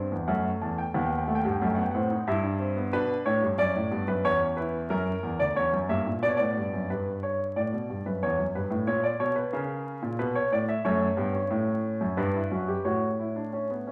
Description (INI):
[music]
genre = classical, baroque-style 3-part fugue for grand piano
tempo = 91 BPM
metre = 3/4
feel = straight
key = unclear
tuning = A4 = 441 Hz
[part]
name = warm concert grand piano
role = solo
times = 0.0-13.9 s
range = D2 to A5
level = -28 LUFS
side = equal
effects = none
[sound]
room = wet stone room reverb, RT60 1.2 s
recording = vinyl crackle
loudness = -28 LUFS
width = mono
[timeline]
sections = 0.0-6.9 A section; 6.9-13.9 B section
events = none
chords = 0.3 Esus24; 0.9 B7/D#; 2.3 Em/G; 2.9 Bm; 4.2 C#m7/E; 4.9 F#7; 6.2 Gmaj7; 8.2 C#dim/E; 8.9 A#m; 10.2 Bm; 10.8 F#m; 12.2 G; 12.9 A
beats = 0.29 | 0.95 1.61 2.27 | 2.93 3.58 4.24 | 4.89 5.56 6.22 | 6.90 7.57 8.22 | 8.88 9.53 10.19 | 10.85 11.51 12.18 | 12.86 13.54